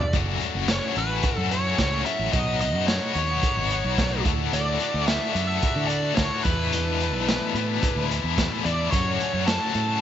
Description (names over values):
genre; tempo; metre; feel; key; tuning
psychedelic rock; 109 BPM; 4/4; straight; F# minor; A4 = 440 Hz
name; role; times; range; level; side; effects
fuzz lead guitar; melody; 0.0-10.0 s; B4 to A5; -28 LUFS; right 1 dB; wah, distortion, tape echo
combo organ; sustained chords; 0.0-10.0 s; F#3 to A5; -37 LUFS; right 13 dB; lush chorus
biting overdriven guitar; riff; 0.0-10.0 s; E2 to F#4; -27 LUFS; left 12 dB; tremolo
fingered electric bass; bass; 0.1-10.0 s; F#1 to D3; -28 LUFS; right 2 dB; none
crunchy breakbeat drum kit; drums; 0.1-9.9 s; hi-hat, kick drum, snare drum; -27 LUFS; right 1 dB; none
room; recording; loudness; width
studio ambience; 1960s-style stereo with parts hard left and right, nothing above 7.8 kHz; -21 LUFS; side -10 dB against mid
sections
0.1-10.0 A section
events
none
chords
0.1 F#m7; 2.3 Badd9; 4.3 Dadd9; 6.5 E7sus4; 8.9 F#m7